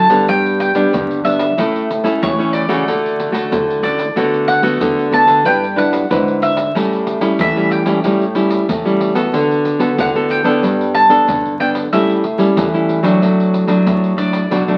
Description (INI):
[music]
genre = samba and choro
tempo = 93 BPM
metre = 4/4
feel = straight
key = D major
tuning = A4 = 442 Hz
[part]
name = mandolin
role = melody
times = 0.0-14.8 s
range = C#5 to A5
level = -20 LUFS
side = equal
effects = none
[part]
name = nylon-string guitar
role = accompaniment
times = 0.0-14.8 s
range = G2 to B4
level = -18 LUFS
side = equal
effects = none
[part]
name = nylon-string guitar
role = bass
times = 0.0-14.8 s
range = G2 to D3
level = -23 LUFS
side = equal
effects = none
[part]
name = egg shaker, surdo and pandeiro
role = percussion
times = 0.1-14.8 s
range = none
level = -28 LUFS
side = equal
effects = none
[sound]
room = wet studio reverb, RT60 0.6 s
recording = very old 78 rpm record, vinyl crackle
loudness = -15 LUFS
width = mono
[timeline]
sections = 0.0-14.8 A section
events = none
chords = 0.3 G; 1.6 A; 2.9 Dmaj7; 4.2 Bm7/D; 5.5 G6; 6.8 A7; 9.3 D6; 10.6 Gadd9; 11.9 A7; 13.2 D/A